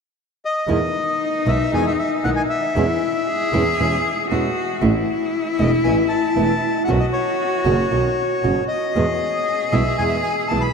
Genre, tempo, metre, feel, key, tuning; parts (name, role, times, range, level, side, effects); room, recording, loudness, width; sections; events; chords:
tango; 116 BPM; 4/4; rubato; E major; A4 = 439 Hz
bandoneon; melody; 0.5-10.7 s; C#5 to B5; -23 LUFS; left 2 dB
clear cello; second line; 0.7-10.7 s; D#4 to G#4; -22 LUFS; left 3 dB
nylon-string guitar; accompaniment; 0.7-10.7 s; B2 to F#4; -24 LUFS; right 3 dB
bright double bass; bass; 0.7-10.7 s; E1 to E2; -23 LUFS; right 2 dB
wet cathedral reverb, RT60 6.5 s; in a vast, echoing space; -17 LUFS; side -5 dB against mid
0.7-10.7 A section
0.0 N.C.; 0.7 Emaj7; 2.8 C#m7/E; 4.8 Asus2; 6.9 Badd9; 8.9 E